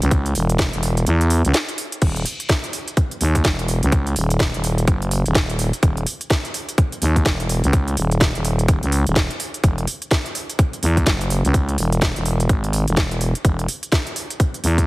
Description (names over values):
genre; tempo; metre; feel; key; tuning
bass house; 126 BPM; 4/4; swing 60% on 16ths; unclear; A4 = 440 Hz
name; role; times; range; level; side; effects
growling FM bass; bass; 0.0-14.9 s; Eb1 to E2; -18 LUFS; equal; overdrive, sidechain pumping
garage drum kit; drums; 0.0-14.9 s; crash cymbal, hi-hat, snare drum; -23 LUFS; equal; none
electronic kick drum; drums; 0.1-14.9 s; none; -19 LUFS; equal; none
room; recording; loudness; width
little or no reverb; heavily compressed radio sound, multiband compression; -17 LUFS; side -21 dB against mid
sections
0.0-14.9 A section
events
kick drops out 1.1-2.0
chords
none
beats
| 0.11 0.59 1.07 1.54 | 2.02 2.49 2.97 3.45 | 3.92 4.40 4.88 5.35 | 5.83 6.30 6.78 7.26 | 7.73 8.21 8.69 9.16 | 9.64 10.11 10.59 11.07 | 11.54 12.02 12.49 12.97 | 13.45 13.92 14.40